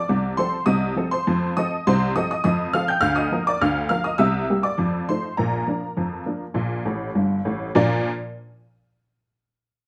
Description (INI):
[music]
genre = ragtime piano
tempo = 102 BPM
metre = 2/4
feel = straight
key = Bb major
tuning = A4 = 440 Hz
[part]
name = honky-tonk upright piano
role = solo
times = 0.0-8.1 s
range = G1 to G6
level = -22 LUFS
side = equal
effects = none
[sound]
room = wet club reverb, RT60 0.8 s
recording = dark, warm production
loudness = -22 LUFS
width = mono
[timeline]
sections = 0.0-7.8 A section; 7.8-8.9 B section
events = honky-tonk piano fill 6.9-7.8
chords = 0.0 F; 0.7 F7/C; 3.0 Bb/D; 4.2 C7; 4.8 F7; 5.4 Bb